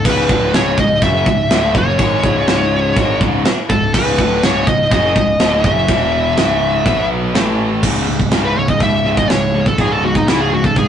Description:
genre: heavy metal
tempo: 123 BPM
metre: 4/4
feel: straight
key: C# minor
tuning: A4 = 437 Hz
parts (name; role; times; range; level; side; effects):
- high-gain lead guitar; melody; 0.0-10.9 s; D#4 to E5; -17 LUFS; left 1 dB; distortion
- distorted electric guitar; riff; 0.0-10.9 s; C#2 to B3; -24 LUFS; right 1 dB; distortion
- scooped high-gain guitar; riff; 0.0-10.9 s; C#2 to B3; -23 LUFS; right 6 dB; distortion
- modern bright picked electric bass; bass; 0.0-10.9 s; C#1 to B1; -22 LUFS; equal; none
- distorted electric guitar; riff; 0.1-10.9 s; C#2 to B3; -21 LUFS; left 5 dB; distortion
- tight metal drum kit; drums; 0.1-10.9 s; china cymbal, crash cymbal, kick drum, snare drum; -17 LUFS; right 1 dB; none
room: light reverb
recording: rough rehearsal-room recording, warm saturation, nothing above 10.3 kHz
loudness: -12 LUFS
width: side -9 dB against mid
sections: 0.0-7.8 A section; 7.8-10.9 B section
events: lead electric guitar solo 7.8-10.9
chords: 0.0 C#5; 5.9 E5; 6.4 C#m; 6.9 B5; 7.3 A5; 7.8 C#5

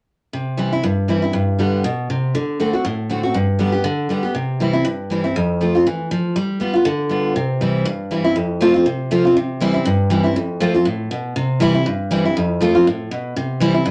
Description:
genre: bluegrass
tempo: 239 BPM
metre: 4/4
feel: swing 55% on 8ths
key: C major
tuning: A4 = 440 Hz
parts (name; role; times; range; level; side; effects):
- picked steel-string acoustic guitar; solo; 0.3-13.9 s; F2 to G4; -19 LUFS; equal; none
room: wet studio ambience, RT60 0.5 s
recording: none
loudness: -19 LUFS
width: mono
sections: 0.3-8.4 A section; 8.4-13.9 B section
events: none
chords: 0.3 C; 1.3 G; 2.3 D7; 3.3 G; 4.3 C; 5.3 F; 6.3 G7; 7.4 C; 8.4 F; 9.4 C; 10.4 F; 11.4 C; 12.4 F; 13.4 C

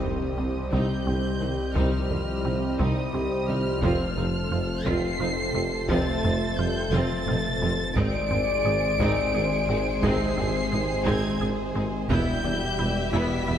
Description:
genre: cinematic, hybrid orchestral and electronic film score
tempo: 58 BPM (dotted quarters)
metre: 6/8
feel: straight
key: C minor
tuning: A4 = 440 Hz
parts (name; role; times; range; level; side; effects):
- rich chamber violin section; melody; 0.0-13.6 s; Eb6 to D7; -33 LUFS; right 1 dB; none
- warm symphonic violin section; second line; 0.0-13.6 s; G4 to E5; -36 LUFS; left 3 dB; none
- rich symphonic viola section; accompaniment; 0.0-13.6 s; D3 to F4; -33 LUFS; equal; none
- dark French horn section; sustained chords; 0.0-13.6 s; C3 to D5; -33 LUFS; left 5 dB; none
- dark trombone section; sustained chords; 0.0-13.6 s; B2 to A3; -35 LUFS; right 2 dB; none
- hollow soft pad; sustained chords; 0.0-13.6 s; Eb3 to E5; -32 LUFS; equal; chorus
- resonant blip pluck; arpeggios; 0.0-13.6 s; C3 to Ab4; -36 LUFS; right 1 dB; none
- rich symphonic cello section; bass; 0.0-13.6 s; C2 to Ab2; -32 LUFS; right 2 dB; none
- rich symphonic double bass section; bass; 0.0-13.6 s; E1 to C2; -33 LUFS; right 2 dB; none
- swelling detuned saw bass; bass; 0.0-13.6 s; E1 to C2; -33 LUFS; left 1 dB; none
- warm tuba; bass; 0.0-13.6 s; E1 to C2; -34 LUFS; right 3 dB; none
- taiko ensemble; drums; 0.0-13.6 s; none; -33 LUFS; left 1 dB; none
- impact; sound effects; 0.0-1.8 s; none; -42 LUFS; equal; none
room: wet concert hall reverb, RT60 2.4 s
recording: none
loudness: -23 LUFS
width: side -9 dB against mid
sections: 0.0-13.6 A section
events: band accent 0.0-0.4; impact 0.0-1.8; drum fill 6.9-8.0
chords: 0.0 Cm; 3.8 F; 8.0 Ab; 12.1 Em

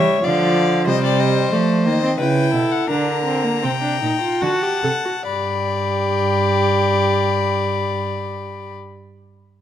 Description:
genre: classical, baroque-style fugue for string quartet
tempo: 68-95 BPM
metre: 3/4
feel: straight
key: unclear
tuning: A4 = 440 Hz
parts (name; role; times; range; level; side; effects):
- rich violin; melody; 0.0-8.8 s; D5 to B5; -24 LUFS; left 11 dB; none
- warm violin; second line; 0.0-8.7 s; A4 to G5; -23 LUFS; left 4 dB; none
- warm viola; accompaniment; 0.0-8.8 s; F3 to A4; -21 LUFS; right 2 dB; none
- warm cello; bass; 0.2-8.7 s; G2 to F3; -22 LUFS; right 4 dB; none
room: moderate recital hall reverb, RT60 1.7 s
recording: close, detailed microphones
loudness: -16 LUFS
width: side -10 dB against mid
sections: 0.0-5.3 A section; 5.3-9.6 B section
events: slowing down 0.0-5.3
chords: 0.2 Dm; 0.9 Am7b5/C; 2.2 A7/C#; 2.9 Gm/D; 4.4 D (rootless); 5.3 G

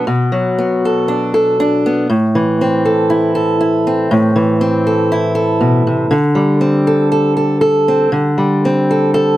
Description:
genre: folk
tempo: 119 BPM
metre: 4/4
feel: straight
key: unclear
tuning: A4 = 440 Hz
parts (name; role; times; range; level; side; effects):
- fingerpicked acoustic archtop guitar; solo; 0.0-9.4 s; A2 to A4; -12 LUFS; equal; none
room: little or no reverb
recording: close, detailed microphones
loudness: -12 LUFS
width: side -14 dB against mid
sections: 0.0-9.4 A section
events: none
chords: 0.0 Bm; 2.1 Am; 6.1 D7sus4

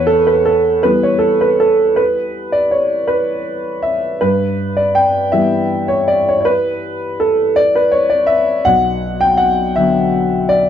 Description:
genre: neoclassical minimalist piano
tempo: 54 BPM (dotted quarters)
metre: 6/8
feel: rubato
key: unclear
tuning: A4 = 440 Hz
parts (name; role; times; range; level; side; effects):
- dark grand piano; solo; 0.0-10.7 s; B1 to G5; -12 LUFS; equal; none
room: moderate stone room reverb, RT60 1.1 s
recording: band playing live in one room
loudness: -12 LUFS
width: side -9 dB against mid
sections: 0.0-10.7 A section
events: none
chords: 0.0 Em; 4.2 G6; 8.7 Bm

